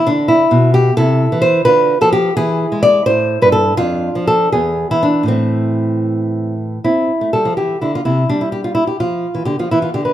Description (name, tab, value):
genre	classical, baroque-style dance for nylon-string guitar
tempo	77-90 BPM (dotted quarters)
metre	6/8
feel	rubato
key	A minor, C major from 6.8 s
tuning	A4 = 440 Hz
part	nylon-string guitar	solo	0.0-10.1 s	E2 to D5	-12 LUFS	equal	none
room	moderate large studio reverb, RT60 1.1 s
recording	band playing live in one room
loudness	-12 LUFS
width	side -12 dB against mid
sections	0.0-6.8 A section; 6.8-10.1 A section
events	none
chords	0.0 Bmadd11; 1.0 Am/C; 1.7 Dm; 2.4 E; 3.1 Am; 3.8 Dm/F; 4.6 E; 5.3 Am; 6.8 C; 8.3 G5